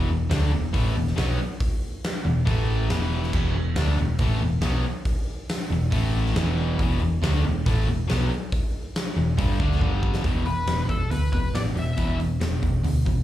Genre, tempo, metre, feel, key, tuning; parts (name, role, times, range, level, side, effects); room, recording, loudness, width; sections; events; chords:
hard rock; 139 BPM; 4/4; straight; E minor; A4 = 437 Hz
overdriven electric guitar; riff; 0.0-13.2 s; E2 to D4; -29 LUFS; left 7 dB
overdriven semi-hollow guitar; riff; 0.0-13.2 s; E2 to D4; -30 LUFS; right 7 dB; slapback echo
hollow-body short-scale fingered electric bass; bass; 0.0-13.2 s; E1 to D2; -24 LUFS; equal
huge arena drum kit; drums; 0.3-13.2 s; crash cymbal, hi-hat, kick drum, snare drum; -27 LUFS; equal
smooth overdriven lead guitar; melody; 10.5-12.2 s; A4 to E5; -30 LUFS; left 2 dB; slapback echo
light reverb; live gig heard through the venue's PA, club reverb; -22 LUFS; side -13 dB against mid
0.0-10.2 A section; 10.2-13.2 B section
drum fill 9.8-10.2
0.0 E5; 2.5 A5; 2.9 E5; 5.9 A5; 6.4 Em; 9.8 G5; 10.2 E5